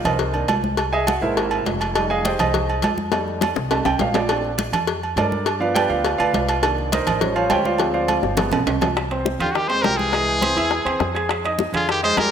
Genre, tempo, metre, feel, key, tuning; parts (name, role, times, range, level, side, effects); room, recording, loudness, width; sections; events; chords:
Afro-Cuban jazz; 205 BPM; 4/4; straight; C minor; A4 = 440 Hz
warm grand piano; accompaniment; 0.0-12.3 s; Eb3 to G#6; -23 LUFS; right 2 dB
upright bass; bass; 0.0-12.3 s; F1 to G2; -28 LUFS; equal
agogo bells and timbales; percussion; 0.1-12.3 s; -24 LUFS; right 5 dB
congas; percussion; 0.1-12.3 s; -28 LUFS; left 1 dB
cowbell and bongos; percussion; 0.1-12.3 s; -26 LUFS; left 8 dB
brilliant trumpet; melody; 9.4-12.3 s; F4 to C5; -21 LUFS; equal; analog delay
warm trombone; second line; 9.4-12.3 s; D3 to Ab3; -30 LUFS; left 3 dB
moderate lush hall reverb, RT60 2.1 s; dreamy mix soaked in reverb; -18 LUFS; side -8 dB against mid
0.0-9.0 A section; 9.0-12.3 B section
grand piano solo 0.0-9.0; drum fill 3.1-4.3, 8.1-9.0
0.0 Cm9; 0.8 C7alt; 2.0 Fm9; 3.1 F7; 4.3 Bbmaj9; 5.5 G7; 6.6 Cm9; 7.2 A7alt; 7.8 Dm7b5; 8.4 G7b9; 9.0 Cm; 10.1 Caug; 11.3 Fm7